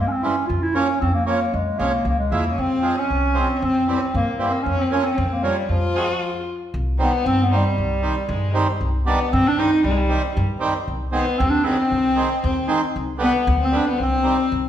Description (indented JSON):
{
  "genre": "klezmer",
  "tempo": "116 BPM",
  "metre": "2/4",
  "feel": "straight",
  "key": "F harmonic minor, C harmonic minor from 6.7 s",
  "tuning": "A4 = 440 Hz",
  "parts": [
    { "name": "dark clarinet", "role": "melody", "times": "0.0-14.7 s", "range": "F3 to F4", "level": "-22 LUFS", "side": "equal", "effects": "none" },
    { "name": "upright bass", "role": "bass", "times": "0.0-14.7 s", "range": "C2 to G2", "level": "-24 LUFS", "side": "equal", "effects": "none" },
    { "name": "accordion", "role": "accompaniment", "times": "0.2-14.4 s", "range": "D3 to E4", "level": "-25 LUFS", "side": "right 3 dB", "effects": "none" },
    { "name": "rich violin", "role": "second line", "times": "2.5-14.7 s", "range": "G3 to F4", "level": "-25 LUFS", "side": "left 3 dB", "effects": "none" }
  ],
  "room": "wet recital hall reverb, RT60 1.4 s",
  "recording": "recorded in a church or concert hall",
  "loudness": "-18 LUFS",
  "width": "side -10 dB against mid",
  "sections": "0.0-6.7 A section; 6.7-14.7 B section",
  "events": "stop 6.2-6.7",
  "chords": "0.5 Bbm/F; 1.5 Db; 2.6 Fm; 3.6 C/F; 4.7 Bbm/F; 5.7 Fm; 6.7 Cm; 10.9 Ab/C; 12.9 G/C; 14.0 Cm"
}